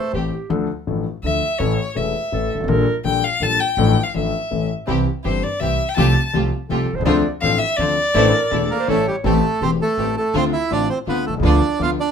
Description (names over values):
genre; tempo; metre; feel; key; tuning
tango; 165 BPM; 3/4; rubato; D minor; A4 = 440 Hz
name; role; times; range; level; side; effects
bandoneon; melody; 0.0-0.1, 8.7-12.1 s; G3 to F5; -20 LUFS; right 3 dB; none
mellow clarinet; second line; 0.0-3.0, 6.7-9.3 s; G4 to D5; -25 LUFS; right 5 dB; none
warm concert grand piano; accompaniment; 0.1-12.0 s; E1 to A4; -21 LUFS; left 5 dB; none
rich chamber string section; stabs; 0.1-0.3, 4.9-12.0 s; A3 to G4; -27 LUFS; right 2 dB; none
upright bass; bass; 0.1-12.0 s; E1 to D2; -23 LUFS; right 2 dB; none
rich violin; second line; 1.2-8.9 s; C5 to A5; -21 LUFS; left 2 dB; none
room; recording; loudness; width
moderate studio reverb, RT60 0.5 s; minimal, uncompressed stereo recording; -17 LUFS; side -7 dB against mid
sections
0.5-9.3 A section; 9.3-12.1 B section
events
violin solo 0.5-9.3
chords
0.0 Am7; 0.5 Dm; 1.6 A; 2.7 Gmadd9/Bb; 3.8 Dm/A; 4.5 A; 4.9 C; 6.0 Fadd9/C; 7.1 Dm7; 8.1 Asus4; 8.9 A; 9.3 Am7; 10.4 Dm7; 11.4 Bdim/D